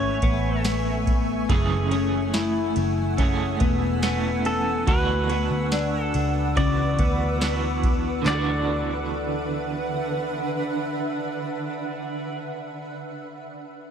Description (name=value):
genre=dream pop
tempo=71 BPM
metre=4/4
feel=straight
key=D lydian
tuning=A4 = 440 Hz
part: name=pedal steel guitar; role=melody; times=0.0-12.4 s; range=A4 to D5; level=-30 LUFS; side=right 1 dB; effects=digital delay
part: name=shimmering ambient pad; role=sustained chords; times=0.0-12.4 s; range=D3 to E6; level=-29 LUFS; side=right 1 dB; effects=chorus, built-in reverb
part: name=clean electric guitar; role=arpeggios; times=0.0-12.5 s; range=C#3 to D5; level=-28 LUFS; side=left 6 dB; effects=wide subtle chorus, digital delay
part: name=vintage muted picked electric bass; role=bass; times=0.0-12.4 s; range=E1 to D2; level=-27 LUFS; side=equal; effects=none
part: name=soft vintage rhythm box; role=drums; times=0.2-8.5 s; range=handclaps, kick drum, ride cymbal, snare drum, tambourine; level=-26 LUFS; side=equal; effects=none
part: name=electric guitar at the edge of break-up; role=accompaniment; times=1.5-12.5 s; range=F#2 to G#4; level=-30 LUFS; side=right 8 dB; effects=tremolo, analog chorus
room=light reverb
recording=dark, warm production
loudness=-22 LUFS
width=side -8 dB against mid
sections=0.0-8.3 A section; 8.3-11.6 B section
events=none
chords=0.0 Amaj7; 1.5 F#m9; 4.9 D69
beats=0.66 | 1.50 2.35 3.19 4.04 | 4.88 5.73 6.57 7.42 | 8.26 9.11 9.95 10.80